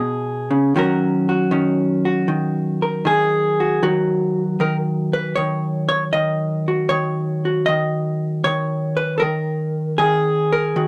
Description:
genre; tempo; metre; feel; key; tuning
solo jazz; 78 BPM; 4/4; swing 69% on 8ths; Eb minor; A4 = 440 Hz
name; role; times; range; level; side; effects
vintage hollow-body jazz guitar; solo; 0.0-10.9 s; Cb3 to Eb5; -20 LUFS; equal; none
room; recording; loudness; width
light reverb; dry, close 1970s-style studio recording; -20 LUFS; mono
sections
0.0-3.8 A section; 3.8-10.9 A section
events
none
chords
0.0 Abm7; 0.7 Ebm7

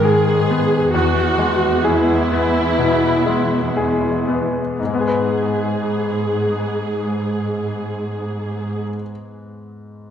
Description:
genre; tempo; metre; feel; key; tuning
cinematic; 57-68 BPM; 4/4; rubato; G# minor; A4 = 443 Hz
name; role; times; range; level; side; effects
bright grand piano; accompaniment; 0.0-10.1 s; E2 to B4; -22 LUFS; left 3 dB; none
rich studio viola section; accompaniment; 0.0-8.8 s; E4 to G#4; -20 LUFS; right 1 dB; none
concert harp; arpeggios; 0.0-9.1 s; E2 to B4; -26 LUFS; left 6 dB; none
warm studio cello section; bass; 0.0-8.8 s; E2 to G#2; -22 LUFS; right 2 dB; none
room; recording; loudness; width
wet scoring stage reverb, RT60 1.7 s; dark, warm production; -16 LUFS; side -9 dB against mid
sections
0.0-4.8 A section; 4.8-8.9 B section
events
slowing down 0.0-4.8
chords
0.0 G#m; 0.9 E; 4.8 G#m

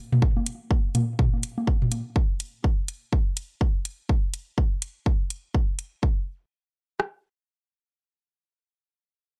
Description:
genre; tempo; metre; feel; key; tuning
techno; 124 BPM; 4/4; swing 60% on 16ths; none; none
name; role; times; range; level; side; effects
electronic toms and congas; percussion; 0.1-2.0 s; none; -27 LUFS; equal; analog delay
house drum kit; drums; 0.2-7.1 s; kick drum, rim click; -25 LUFS; equal; none
electronic hi-hat; drums; 0.5-5.9 s; none; -34 LUFS; equal; none
room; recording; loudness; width
little or no reverb; none; -26 LUFS; mono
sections
0.0-6.0 A section; 6.0-9.4 B section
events
none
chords
none

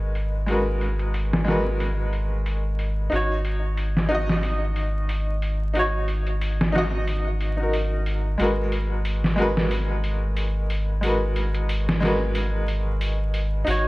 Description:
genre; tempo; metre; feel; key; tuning
trip hop; 91 BPM; 4/4; swing 56% on 16ths; G# minor; A4 = 435 Hz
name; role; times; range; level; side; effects
bright upright piano; accompaniment; 0.0-13.9 s; G#3 to D#5; -26 LUFS; equal; tremolo, tape echo
soft dub sub bass; bass; 0.0-13.9 s; G#1; -24 LUFS; equal; none
trip hop sampler-style drum kit; drums; 0.2-13.8 s; hi-hat, snare drum; -28 LUFS; equal; overdrive, low-pass filter on snare, studio ambience, low-pass filter on hats, low-pass filter on kick, gated reverb
room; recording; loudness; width
light reverb, digital ambience; bright 1980s-style digital production, vinyl crackle; -21 LUFS; side -20 dB against mid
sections
0.0-13.9 A section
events
none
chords
0.0 G#m9; 3.1 D#m7/G#; 8.4 G#m9

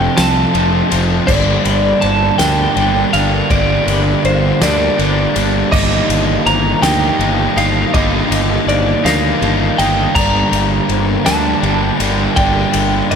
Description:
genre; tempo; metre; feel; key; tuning
post-rock; 54 BPM (dotted quarters); 6/8; straight; G minor; A4 = 440 Hz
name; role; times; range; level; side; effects
twelve-string electric guitar; melody; 0.0-13.2 s; C5 to Bb5; -18 LUFS; right 1 dB; analog delay
warm chamber string section; sustained chords; 0.0-13.2 s; D3 to G5; -30 LUFS; left 3 dB; none
twangy electric guitar; arpeggios; 0.0-13.2 s; G2 to F4; -26 LUFS; left 2 dB; none
crunchy overdriven guitar; riff; 0.0-13.2 s; F2 to Eb4; -19 LUFS; right 9 dB; spring reverb
thick fuzz guitar; riff; 0.0-13.2 s; F2 to Eb4; -19 LUFS; left 11 dB; distortion
fuzz fingered electric bass; bass; 0.0-13.2 s; F1 to D2; -18 LUFS; equal; overdrive
loose indie drum kit; drums; 0.2-13.2 s; crash cymbal, kick drum, ride cymbal, snare drum; -20 LUFS; left 1 dB; none
felt-muted upright piano; arpeggios; 1.3-13.2 s; Bb4 to D6; -29 LUFS; equal; slapback echo, analog delay
room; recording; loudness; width
moderate lush hall reverb, RT60 3.0 s; big arena sound; -12 LUFS; side -7 dB against mid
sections
0.0-13.2 A section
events
none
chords
0.0 F; 1.3 Gm; 5.7 Ebadd9/G; 10.2 Gm

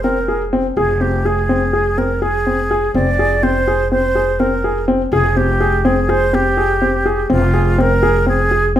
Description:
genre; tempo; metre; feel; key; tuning
contemporary instrumental, chamber music in an uneven meter; 248 BPM (eighths); 9/8; straight; F dorian; A4 = 440 Hz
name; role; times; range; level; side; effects
wooden flute; melody; 0.0-8.8 s; F4 to D5; -18 LUFS; right 1 dB; none
dark grand piano; arpeggios; 0.0-8.8 s; C4 to Ab4; -17 LUFS; left 1 dB; none
upright bass; bass; 0.0-8.8 s; F1; -19 LUFS; equal; none
room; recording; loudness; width
moderate recital hall reverb, RT60 1.3 s; none; -13 LUFS; side -11 dB against mid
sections
0.0-8.8 A section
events
none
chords
0.0 Fm

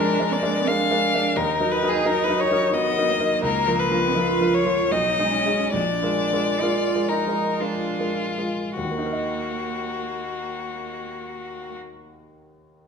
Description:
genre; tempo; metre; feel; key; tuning
classical, slow romantic movement for piano trio; 49-89 BPM; 3/4; rubato; Eb minor; A4 = 439 Hz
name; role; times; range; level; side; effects
rich violin; melody; 0.0-11.8 s; F4 to F5; -24 LUFS; left 6 dB; none
rich cello; second line; 0.0-11.8 s; Bb3 to F4; -28 LUFS; right 9 dB; none
clear grand piano; accompaniment; 0.0-12.9 s; Bb1 to Eb5; -25 LUFS; right 1 dB; none
room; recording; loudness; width
wet recital hall reverb, RT60 1.5 s; none; -20 LUFS; side -6 dB against mid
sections
0.0-8.8 A section; 8.8-12.9 B section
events
slowing down 2.4-8.8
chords
0.0 Bb7/F; 1.4 Ebm; 3.4 Bbm/Db; 4.9 Abm/Cb; 5.7 Bb7; 8.8 Ebm

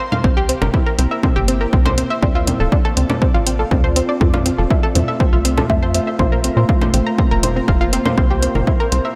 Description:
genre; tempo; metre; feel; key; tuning
melodic techno; 121 BPM; 4/4; straight; unclear; A4 = 440 Hz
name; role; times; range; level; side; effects
analog pluck; arpeggios; 0.0-9.1 s; C4 to Bb5; -23 LUFS; equal; chorus, sidechain pumping, delay
filtered dub chord stab; stabs; 0.0-8.2 s; A3 to E5; -29 LUFS; equal; none
electronic congas and hi-hat; drums; 0.1-9.0 s; none; -24 LUFS; equal; sidechain pumping on perc, sidechain pumping on hats
deep dark ambient pad; sustained chords; 1.0-9.2 s; A3 to E5; -26 LUFS; equal; chorus, built-in reverb, sidechain pumping
tight sequencer bass; bass; 0.2-9.0 s; D1 to Bb2; -21 LUFS; equal; sidechain pumping
electronic kick drum; drums; 0.2-8.8 s; none; -19 LUFS; equal; none
room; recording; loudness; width
moderate huge ambient reverb, RT60 3.9 s; dreamy mix soaked in reverb; -16 LUFS; mono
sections
0.0-9.2 A section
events
none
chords
0.2 C7; 2.2 Dm7; 4.2 Fmaj7; 6.2 Bbsus2; 8.2 C7

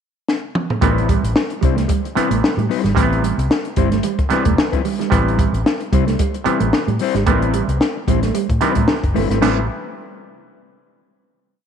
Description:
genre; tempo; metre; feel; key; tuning
funk; 112 BPM; 4/4; swing 56% on 16ths; A minor; A4 = 443 Hz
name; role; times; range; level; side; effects
compact cocktail drum kit; drums; 0.3-9.6 s; china cymbal, hi-hat, kick drum, snare drum, toms; -19 LUFS; left 1 dB; none
mellow electric guitar; accompaniment; 0.8-9.6 s; G3 to C5; -23 LUFS; left 11 dB; spring reverb
mellow electric guitar; riff; 0.8-9.6 s; G3 to A3; -23 LUFS; right 12 dB; lush chorus
clav; stabs; 0.8-9.7 s; C3 to B3; -23 LUFS; right 10 dB; none
vintage muted fingered electric bass; bass; 0.8-9.7 s; E1 to A2; -20 LUFS; equal; none
room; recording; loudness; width
light reverb, studio ambience; 1960s-style stereo with parts hard left and right; -15 LUFS; side -8 dB against mid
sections
0.0-0.8 pickup bar; 0.8-9.4 A section; 9.4-11.6 final chord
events
drum fill 0.3-0.8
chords
0.0 N.C.; 0.8 Am9

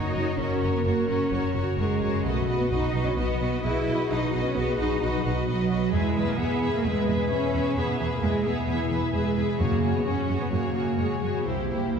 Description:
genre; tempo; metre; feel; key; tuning
cinematic, heroic adventure film score; 130 BPM; 4/4; straight; B major; A4 = 440 Hz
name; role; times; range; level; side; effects
rich studio violin section; melody; 0.0-12.0 s; C5 to E5; -36 LUFS; left 3 dB; none
warm symphonic violin section; second line; 0.0-12.0 s; G4 to B4; -35 LUFS; left 2 dB; none
clear symphonic viola section; accompaniment; 0.0-12.0 s; E4 to G#4; -34 LUFS; right 1 dB; none
mellow French horn section; sustained chords; 0.0-12.0 s; D#4 to B4; -32 LUFS; left 2 dB; none
concert harp; arpeggios; 0.0-12.0 s; E2 to E5; -31 LUFS; left 4 dB; none
clear symphonic cello section; bass; 0.0-12.0 s; F#3 to E4; -28 LUFS; right 3 dB; none
rich symphonic double bass section; bass; 0.2-12.0 s; F#1 to F#2; -30 LUFS; right 2 dB; none
timpani; percussion; 9.6-10.2 s; F#2; -31 LUFS; equal; none
room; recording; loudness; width
wet concert hall reverb, RT60 1.7 s; heard from further back in the room; -23 LUFS; side -6 dB against mid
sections
0.0-12.0 A section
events
none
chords
0.0 F#; 2.3 B; 5.9 E; 9.6 F#sus2; 11.5 C7

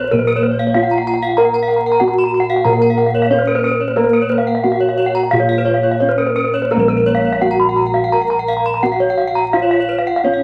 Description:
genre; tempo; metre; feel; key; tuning
Balinese gamelan; 85-95 BPM; 4/4; straight; Bb pelog; A4 = 440 Hz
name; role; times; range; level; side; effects
gamelan-type bronze metallophone; melody; 0.0-10.4 s; Bb3 to Bb4; -20 LUFS; equal; none
gamelan-type bronze metallophone; arpeggios; 0.0-10.3 s; Bb4 to Cb6+35c; -20 LUFS; equal; none
gamelan-type bronze metallophone; arpeggios; 0.0-10.4 s; Bb4 to Cb6+35c; -24 LUFS; equal; none
gamelan-type bossed gongs; bass; 0.0-10.4 s; Bb1 to Bb4; -22 LUFS; equal; none
room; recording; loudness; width
moderate large studio reverb, RT60 1.0 s; vinyl crackle; -15 LUFS; mono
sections
0.0-6.7 A section; 6.7-10.4 B section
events
none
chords
none

